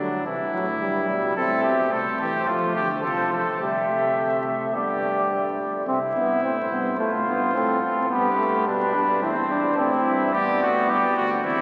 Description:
classical, imitative canzona for brass ensemble; 108 BPM; 4/4; straight; A4 = 440 Hz
clear trumpet; second line; 0.0-11.6 s; C4 to A4; -28 LUFS; equal
clear trombone; accompaniment; 0.0-11.6 s; E3 to E4; -28 LUFS; equal
mellow bass trombone; bass; 0.0-11.6 s; D2 to F3; -34 LUFS; equal
mellow cornet; melody; 1.4-11.6 s; A4 to E5; -28 LUFS; equal
wet cathedral reverb, RT60 6.8 s; very old 78 rpm record, vinyl crackle; -23 LUFS; mono
0.0-5.9 A section; 5.9-11.6 B section
0.3 C (rootless); 1.4 Am; 2.5 F; 3.6 Gsus4/C; 4.7 G; 5.9 C; 8.1 G; 9.2 C/E; 10.3 G
0.26 0.82 | 1.38 1.93 2.49 3.05 | 3.61 4.18 4.75 5.31 | 5.88 6.44 7.00 7.55 | 8.12 8.67 9.23 9.79 | 10.34 10.90 11.45

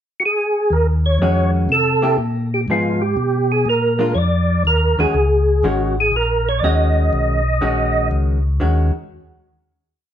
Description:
jazz; 122 BPM; 4/4; swing 66% on 8ths; Eb minor; A4 = 441 Hz
percussive tonewheel organ; melody; 0.2-8.1 s; F4 to Eb5; -18 LUFS; right 1 dB; slow rotary speaker, chorus vibrato
mellow tonewheel organ; bass; 0.7-8.9 s; Ab1 to C3; -18 LUFS; equal; slow rotary speaker
vintage hollow-body jazz guitar; accompaniment; 1.2-8.9 s; Eb3 to Ab4; -23 LUFS; left 1 dB
moderate stone room reverb, RT60 1.1 s; band playing live in one room; -15 LUFS; side -10 dB against mid
0.0-0.7 pickup bar; 0.7-8.6 A section; 8.6-10.1 final chord
0.0 N.C.; 0.7 Ebm11; 1.7 C7; 2.7 Fm7b5; 3.7 Bb7; 4.7 Ebm7
0.22 | 0.71 1.21 1.70 2.19 | 2.69 3.18 3.67 4.16 | 4.66 5.15 5.64 6.14 | 6.63 7.13 7.62 8.12 | 8.61

